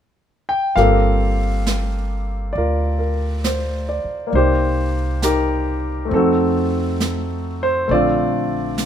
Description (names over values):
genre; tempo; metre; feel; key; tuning
jazz ballad; 67 BPM; 4/4; swing 68% on 8ths; G minor; A4 = 440 Hz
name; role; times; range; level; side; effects
clear concert grand piano; accompaniment; 0.5-8.9 s; D3 to G5; -19 LUFS; left 1 dB; none
upright bass; bass; 0.8-8.9 s; G1 to F2; -21 LUFS; equal; none
jazz brush drum kit; drums; 0.8-8.9 s; brushed snare drum, hi-hat, snare drum; -27 LUFS; right 3 dB; none
room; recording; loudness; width
light reverb; minimal, uncompressed stereo recording; -17 LUFS; side -9 dB against mid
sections
0.8-8.9 A section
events
none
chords
0.0 N.C.; 0.8 Gm11; 4.3 Cm7; 6.1 F7b9; 7.9 Bbmaj9